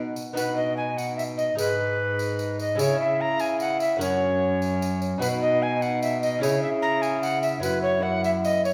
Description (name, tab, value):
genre	classical, renaissance-style consort dance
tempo	148 BPM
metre	3/4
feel	straight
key	B major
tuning	A4 = 441 Hz
part	lute	accompaniment	0.0-8.7 s	F#2 to B4	-33 LUFS	equal	none
part	mellow bassoon	accompaniment	0.0-8.7 s	C#4 to E4	-31 LUFS	equal	none
part	rich cello	bass	0.0-8.7 s	F#2 to C#3	-33 LUFS	equal	none
part	tambourine	percussion	0.2-8.7 s	none	-41 LUFS	equal	none
part	alto recorder	melody	0.4-8.7 s	B4 to A#5	-28 LUFS	equal	none
room	wet recital hall reverb, RT60 1.4 s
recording	recorded in a church or concert hall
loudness	-25 LUFS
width	mono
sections	0.4-8.7 A section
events	none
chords	0.4 B; 1.6 G#m; 2.8 C#m; 4.0 F#; 5.2 B; 6.4 C#m; 7.6 F#7sus4; 8.0 F#7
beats	| 0.37 0.78 1.18 | 1.58 1.99 2.40 | 2.80 3.20 3.61 | 4.01 4.42 4.82 | 5.22 5.62 6.02 | 6.43 6.83 7.23 | 7.63 8.04 8.44